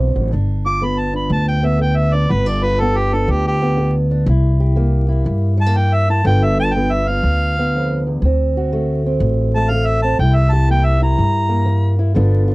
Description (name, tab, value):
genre	acoustic country blues, solo or duo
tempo	122 BPM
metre	4/4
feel	swing 66% on 8ths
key	G mixolydian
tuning	A4 = 441 Hz
part	fingerpicked old ladder-braced acoustic guitar	accompaniment	0.0-12.5 s	D2 to G4	-22 LUFS	equal	none
part	upright bass	bass	0.0-12.5 s	G1 to G2	-16 LUFS	equal	none
part	mellow harmonica	melody	0.7-12.0 s	G4 to D6	-20 LUFS	equal	none
room	little or no reverb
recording	dry, close 1970s-style studio recording, vinyl crackle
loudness	-14 LUFS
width	side -22 dB against mid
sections	0.3-12.5 A section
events	harmonica solo 0.0-12.5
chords	0.3 G7; 4.3 C7; 6.2 G7; 8.2 D7; 10.2 C7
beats	| 0.32 0.81 1.30 1.80 | 2.29 2.79 3.28 3.77 | 4.27 4.76 5.26 5.75 | 6.24 6.74 7.23 7.73 | 8.22 8.71 9.21 9.70 | 10.20 10.69 11.18 11.68 | 12.17